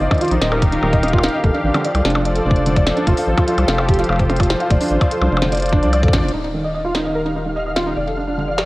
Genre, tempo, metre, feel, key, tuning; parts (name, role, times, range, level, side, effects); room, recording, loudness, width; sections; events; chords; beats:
IDM; 147 BPM; 4/4; straight; D phrygian; A4 = 440 Hz
warm analog pad; sustained chords; 0.0-8.7 s; Eb3 to F5; -22 LUFS; left 1 dB; chorus
felt-muted upright piano; arpeggios; 0.0-8.6 s; D3 to F5; -21 LUFS; right 1 dB; low-pass filter, ping-pong delay
rubbery square bass; bass; 0.0-8.7 s; Eb1 to C2; -21 LUFS; equal
electronic kick drum; drums; 0.1-6.2 s; -17 LUFS; equal
glitchy drum kit; drums; 0.1-8.7 s; hi-hat, percussion blips, snare drum; -23 LUFS; equal; ping-pong delay
flickering grainy texture; texture; 6.6-8.7 s; F5; -30 LUFS; right 1 dB; built-in reverb
light reverb; worn, warbling old tape, cassette tape, warbly pitch drift; -15 LUFS; side -19 dB against mid
0.0-6.3 A section; 6.3-8.7 B section
drum fill 6.1; band accent 6.1; filter sweep on analog synth pad 6.3-8.7
0.0 Ebadd9; 1.4 Dm7/F; 6.3 Ebadd9; 8.0 Dm7/F
0.21 0.62 1.03 | 1.44 1.85 2.25 2.66 | 3.07 3.48 3.89 4.29 | 4.70 5.11 5.52 5.93 | 6.34 6.74 7.15 7.56 | 7.97 8.38